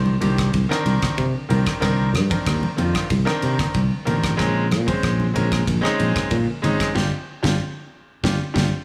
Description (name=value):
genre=electric jazz fusion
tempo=94 BPM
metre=4/4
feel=straight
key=unclear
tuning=A4 = 439 Hz
part: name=clear concert grand piano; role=accompaniment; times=0.0-8.7 s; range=Eb3 to C5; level=-26 LUFS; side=equal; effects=none
part: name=sustaining fretless electric bass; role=bass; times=0.0-8.7 s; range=G1 to C3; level=-23 LUFS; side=equal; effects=none
part: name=congas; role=percussion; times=0.1-8.7 s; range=none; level=-30 LUFS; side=equal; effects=none
part: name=crisp fusion drum kit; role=drums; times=0.2-8.7 s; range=kick drum, ride cymbal, rim click, snare drum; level=-28 LUFS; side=equal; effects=none
room=light reverb, small room ambience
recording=none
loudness=-21 LUFS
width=mono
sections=0.0-8.8 A section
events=band accent 7.0-8.8; grand piano fill 7.6-8.8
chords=0.0 Cm9; 4.4 Bbm9; 7.0 G5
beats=0.54 1.19 | 1.83 2.47 3.11 3.75 | 4.39 5.03 5.67 6.32 | 6.96 7.60 8.24